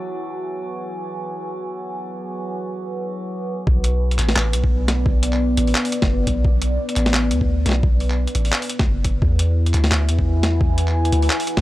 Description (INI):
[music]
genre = half-time drum and bass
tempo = 173 BPM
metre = 4/4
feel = swing 57% on 16ths, half-time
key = B dorian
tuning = A4 = 440 Hz
[part]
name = deep dark ambient pad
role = sustained chords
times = 0.0-11.6 s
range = B3 to G#5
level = -26 LUFS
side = equal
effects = chorus, built-in reverb, sidechain pumping
[part]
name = metallic inharmonic drone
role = texture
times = 0.0-3.7 s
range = F#3 to F#4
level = -31 LUFS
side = right 1 dB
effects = chorus, built-in reverb
[part]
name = long sustained 808-style bass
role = bass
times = 3.7-11.6 s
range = F#1 to E2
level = -19 LUFS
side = equal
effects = none
[part]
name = electronic kick drum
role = drums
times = 3.7-11.6 s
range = none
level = -19 LUFS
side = equal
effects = overdrive
[part]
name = boom bap sampler-style drum kit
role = drums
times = 3.8-11.6 s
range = handclaps, hi-hat, snare drum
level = -23 LUFS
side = equal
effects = overdrive
[sound]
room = digital ambience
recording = dry, gritty hardware recording, cassette tape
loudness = -18 LUFS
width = side -16 dB against mid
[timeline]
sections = 0.0-3.7 A section; 3.7-11.6 B section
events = filter sweep on ambient pad 0.0-3.7; drop 3.7-11.6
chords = 0.0 Eadd9; 3.7 Bm; 9.2 Eadd9